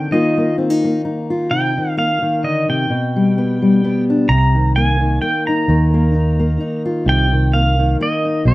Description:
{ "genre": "acoustic folk duo or small band", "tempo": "130 BPM", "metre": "3/4", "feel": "swing 56% on 8ths", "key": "C minor", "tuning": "A4 = 440 Hz", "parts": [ { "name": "pedal steel guitar", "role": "melody", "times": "0.0-8.5 s", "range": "D5 to Bb5", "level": "-20 LUFS", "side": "right 1 dB", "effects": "slapback echo" }, { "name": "fingerpicked steel-string acoustic guitar", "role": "accompaniment", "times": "0.0-8.5 s", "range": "B2 to F4", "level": "-17 LUFS", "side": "left 1 dB", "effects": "none" }, { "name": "fingered electric bass", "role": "bass", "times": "4.3-8.5 s", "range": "B1 to Eb2", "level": "-14 LUFS", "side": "right 1 dB", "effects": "none" } ], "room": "light reverb", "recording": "rough home demo mix", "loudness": "-14 LUFS", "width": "side -19 dB against mid", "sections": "0.0-8.5 A section", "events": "none", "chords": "0.1 Ebsus2; 1.5 Cm7; 2.9 G/B; 4.3 Cm7; 5.7 Ebsus2; 7.1 Cm7", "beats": "| 0.12 0.58 1.04 | 1.51 1.97 2.44 | 2.90 3.36 3.83 | 4.29 4.75 5.22 | 5.68 6.14 6.61 | 7.07 7.53 7.99 | 8.46" }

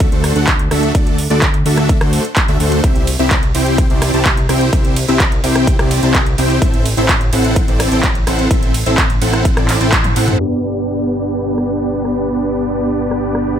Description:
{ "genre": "EDM, festival progressive house", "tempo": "127 BPM", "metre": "4/4", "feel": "straight", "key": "G major", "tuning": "A4 = 440 Hz", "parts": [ { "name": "dense compressed supersaw", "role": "riff", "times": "0.0-13.6 s", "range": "A3 to A5", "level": "-16 LUFS", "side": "equal", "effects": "sidechain pumping, low-pass filter, dub echo" }, { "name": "fat analog bass", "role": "bass", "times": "0.0-13.6 s", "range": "G1 to D2", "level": "-19 LUFS", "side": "equal", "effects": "sidechain pumping" }, { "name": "big-room dance drum kit", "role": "drums", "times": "0.0-13.6 s", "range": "handclaps, hi-hat, ride cymbal, rim click, toms", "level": "-19 LUFS", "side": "right 1 dB", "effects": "low-pass filter on hats, small room ambience, low-pass filter on snare, low-pass filter on cymbals, low-pass filter on toms" }, { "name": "electronic kick drum", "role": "drums", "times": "0.0-10.0 s", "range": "none", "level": "-15 LUFS", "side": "equal", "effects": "small room ambience" } ], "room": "light reverb", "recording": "low-pass filter", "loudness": "-12 LUFS", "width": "side -9 dB against mid", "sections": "0.0-10.4 A section; 10.4-13.6 B section", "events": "drop 0.0-10.4; drum fill 9.9-10.4; band accent 9.9", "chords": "0.0 D; 2.8 C; 6.6 Am; 10.4 G", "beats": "0.00 0.48 | 0.95 1.42 1.89 2.37 | 2.84 3.31 3.78 4.25 | 4.73 5.20 5.67 6.14 | 6.62 7.09 7.56 8.04 | 8.51 8.98 9.45 9.93 | 10.40 10.87 11.34 11.81 | 12.29 12.76 13.23" }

